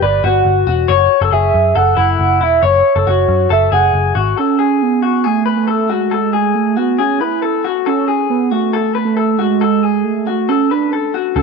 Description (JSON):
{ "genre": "jangly indie pop", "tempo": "137 BPM", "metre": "4/4", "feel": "straight", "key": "unclear", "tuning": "A4 = 440 Hz", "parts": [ { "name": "warbly nostalgic lead", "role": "melody", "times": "0.0-11.4 s", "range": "G#3 to F#5", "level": "-15 LUFS", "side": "right 9 dB", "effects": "chorus" }, { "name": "electric guitar through a small old amp", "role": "arpeggios", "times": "0.0-11.4 s", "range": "E4 to C#5", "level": "-16 LUFS", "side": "left 13 dB", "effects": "none" }, { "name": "vintage muted picked electric bass", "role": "bass", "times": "0.0-4.3, 11.4 s", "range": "E1 to F#2", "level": "-17 LUFS", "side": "left 1 dB", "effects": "none" } ], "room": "moderate plate reverb, RT60 2.6 s", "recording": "1960s-style stereo with parts hard left and right", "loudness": "-12 LUFS", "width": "side -4 dB against mid", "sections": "0.0-4.4 A section; 4.4-11.4 B section", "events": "none", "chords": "0.0 Gmaj7; 0.9 F#m7; 4.4 B7(no3)", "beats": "0.02 0.46 | 0.89 1.33 1.76 2.20 | 2.63 3.06 3.50 3.94 | 4.37 4.81 5.24 5.68 | 6.12 6.55 6.99 7.43 | 7.86 8.30 8.74 9.18 | 9.61 10.05 10.49 10.92 | 11.36" }